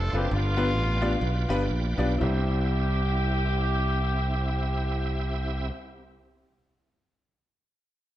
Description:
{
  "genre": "uptempo gospel",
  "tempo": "114-142 BPM",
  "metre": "4/4",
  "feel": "swing 56% on 8ths",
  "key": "C major",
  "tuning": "A4 = 439 Hz",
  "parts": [
    { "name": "warm horn section", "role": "melody", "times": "0.0-5.7 s", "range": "A3 to A4", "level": "-32 LUFS", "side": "equal", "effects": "none" },
    { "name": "bright tonewheel organ", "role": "sustained chords", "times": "0.0-5.7 s", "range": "C4 to A5", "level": "-36 LUFS", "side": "right 3 dB", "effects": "slow rotary speaker, overdrive, chorus vibrato" },
    { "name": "modern bright fingered electric bass", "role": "bass", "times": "0.0-5.7 s", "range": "F#1 to C2", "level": "-26 LUFS", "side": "equal", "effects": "none" },
    { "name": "clear baby grand piano", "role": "accompaniment", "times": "0.1-5.7 s", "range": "C2 to D5", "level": "-31 LUFS", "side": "left 2 dB", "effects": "none" }
  ],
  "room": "moderate recital hall reverb, RT60 1.5 s",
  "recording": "none",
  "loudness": "-24 LUFS",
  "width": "side -13 dB against mid",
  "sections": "0.0-2.2 A section; 2.2-6.4 B section",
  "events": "slowing down 0.0-2.2",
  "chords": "0.3 G7; 2.2 C",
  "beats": "| 0.32 0.76 1.22 1.70 | 2.21 2.74 3.27 3.79 | 4.32 4.85 5.38"
}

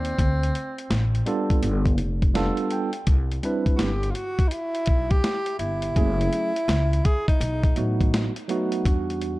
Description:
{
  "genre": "hip hop, jazz-hop",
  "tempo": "83 BPM",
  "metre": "4/4",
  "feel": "swing 64% on 16ths",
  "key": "unclear",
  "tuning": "A4 = 442 Hz",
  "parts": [
    { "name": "breathy tenor saxophone", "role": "melody", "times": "0.0-8.1 s", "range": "C4 to G#4", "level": "-28 LUFS", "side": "equal", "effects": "analog delay" },
    { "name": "upright bass", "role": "bass", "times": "0.0-9.3 s", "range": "F1 to E2", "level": "-25 LUFS", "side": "equal", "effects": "none" },
    { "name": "boom bap sampler-style drum kit", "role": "drums", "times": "0.0-9.4 s", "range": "hi-hat, kick drum, snare drum", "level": "-23 LUFS", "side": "equal", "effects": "vintage 12-bit sampler grit" },
    { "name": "tine electric piano", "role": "accompaniment", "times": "1.3-9.4 s", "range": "F#3 to G5", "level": "-26 LUFS", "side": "right 2 dB", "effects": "medium stereo tremolo" }
  ],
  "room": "digital ambience",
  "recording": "dark, warm production",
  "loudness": "-21 LUFS",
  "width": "side -19 dB against mid",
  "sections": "0.0-8.9 A section",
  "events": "tine electric piano fill 2.0-3.1",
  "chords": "0.2 Dm7; 1.6 G9; 3.1 Cmaj9; 6.0 F#m9; 7.4 B7; 8.9 Em7",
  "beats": "| 0.18 0.90 1.62 2.35 | 3.07 3.79 4.52 5.24 | 5.96 6.68 7.41 8.13 | 8.85"
}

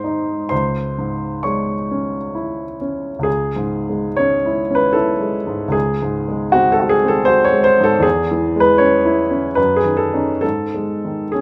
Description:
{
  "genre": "classical, romantic nocturne for solo piano",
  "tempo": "62-82 BPM",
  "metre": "3/4",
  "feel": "rubato",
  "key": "C# minor",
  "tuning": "A4 = 441 Hz",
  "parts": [
    { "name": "warm baby grand piano", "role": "solo", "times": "0.0-11.4 s", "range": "C#2 to C#6", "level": "-18 LUFS", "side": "equal", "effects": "none" }
  ],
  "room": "moderate large studio reverb, RT60 1.4 s",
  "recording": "none",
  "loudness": "-17 LUFS",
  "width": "mono",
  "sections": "0.0-3.3 A section; 3.3-11.4 A section",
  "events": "none",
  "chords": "0.0 G#; 0.5 C#m; 5.7 G#7/C#; 8.0 C#m/E; 9.6 D#m7b5/F#; 10.4 G#5",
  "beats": "| 0.51 1.45 2.36 | 3.27 4.18 4.96 | 5.74 6.54 7.28 | 8.04 8.80 9.57 | 10.43 11.33"
}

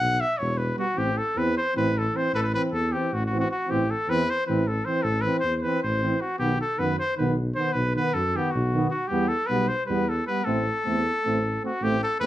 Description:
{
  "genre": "balkan folk, Balkan brass band",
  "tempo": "309 BPM (eighths)",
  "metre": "7/8",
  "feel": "straight",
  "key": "A dorian sharp4",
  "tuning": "A4 = 440 Hz",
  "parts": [
    { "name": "warm trumpet", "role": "melody", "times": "0.0-12.3 s", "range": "F#4 to F#5", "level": "-26 LUFS", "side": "equal", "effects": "none" },
    { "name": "dark tuba", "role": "bass", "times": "0.0-12.3 s", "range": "E1 to F#2", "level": "-28 LUFS", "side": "equal", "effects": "none" },
    { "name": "bright trombone", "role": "accompaniment", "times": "0.8-12.3 s", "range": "B3 to C4", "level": "-32 LUFS", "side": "left 3 dB", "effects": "none" },
    { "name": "dark euphonium", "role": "accompaniment", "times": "0.8-12.3 s", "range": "D#3 to A3", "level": "-30 LUFS", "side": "right 4 dB", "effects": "none" }
  ],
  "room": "wet studio reverb, RT60 0.5 s",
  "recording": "heard from further back in the room, nothing above 10.3 kHz",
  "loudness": "-22 LUFS",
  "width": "side -13 dB against mid",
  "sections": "1.0-11.8 A section",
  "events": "none",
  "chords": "0.0 E5; 1.0 Am; 6.4 B; 9.1 Em; 10.5 Am",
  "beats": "0.18 0.37 0.57 0.76 | 0.96 1.15 1.34 1.54 1.73 1.93 2.12 | 2.32 2.51 2.71 2.90 3.10 3.29 3.49 | 3.68 3.88 4.07 4.26 4.46 4.65 4.85 | 5.04 5.24 5.43 5.62 5.82 6.01 6.21 | 6.40 6.59 6.79 6.98 7.18 7.37 7.56 | 7.76 7.95 8.14 8.34 8.53 8.72 8.92 | 9.11 9.30 9.50 9.69 9.88 10.07 10.27 | 10.46 10.65 10.85 11.04 11.23 11.42 11.62 | 11.81 12.00 12.19"
}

